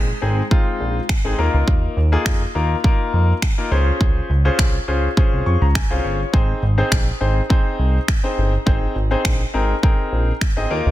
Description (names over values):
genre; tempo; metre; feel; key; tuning
dance-pop; 103 BPM; 4/4; straight; Ab major; A4 = 440 Hz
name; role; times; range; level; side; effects
clear grand piano; accompaniment; 0.0-10.9 s; Ab3 to Db6; -22 LUFS; left 2 dB; sidechain pumping
chorused synth bass; bass; 0.0-10.9 s; G1 to F2; -19 LUFS; equal; sidechain pumping
house drum kit; drums; 0.5-10.6 s; finger snaps, kick drum; -18 LUFS; equal; soft clipping on snare
room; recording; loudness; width
little or no reverb; dense, heavily limited modern master; -16 LUFS; side -14 dB against mid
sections
0.0-10.9 A section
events
grand piano fill 5.2-6.3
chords
0.0 Ab; 1.4 Ebsus2; 3.7 Dbmaj7; 6.3 Ab